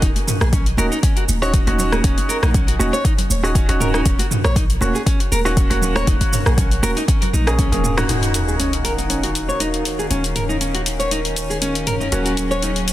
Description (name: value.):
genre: afro house.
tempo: 119 BPM.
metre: 4/4.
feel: swing 54% on 16ths.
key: Eb minor.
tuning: A4 = 440 Hz.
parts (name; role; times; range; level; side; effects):
nylon-string guitar; arpeggios; 0.0-12.7 s; Db4 to Eb5; -24 LUFS; equal; sidechain pumping, low-pass filter, digital delay.
warm 808-style bass; bass; 0.0-12.9 s; Eb1 to Bb1; -22 LUFS; equal; tube saturation, sidechain pumping.
deep house drum kit; drums; 0.0-12.9 s; hi-hat, rim click, shaker, toms; -23 LUFS; equal; overdrive.
electronic kick drum; drums; 0.0-7.7 s; none; -18 LUFS; equal; overdrive.
congas; percussion; 0.2-7.9 s; none; -27 LUFS; right 3 dB; none.
felt-muted upright piano; stabs; 0.8-12.9 s; Bb3 to Ab4; -25 LUFS; right 1 dB; sidechain pumping, digital delay.
warm studio string section; sustained chords; 8.1-12.9 s; Eb3 to Ab4; -25 LUFS; left 1 dB; sidechain pumping, low-pass filter.
sub drop; sound effects; 8.1-10.1 s; none; -25 LUFS; equal; none.
room: light reverb, small room reverb.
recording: dense, heavily limited modern master.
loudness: -16 LUFS.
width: side -14 dB against mid.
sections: 0.0-8.1 A section; 8.1-12.9 B section.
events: drum fill 7.6-8.1; band accent 8.0; impact 8.1-10.1; filter sweep on nylon-string guitar 8.1-12.9; filter sweep on string section 8.1-12.9.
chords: 0.0 Ebm7.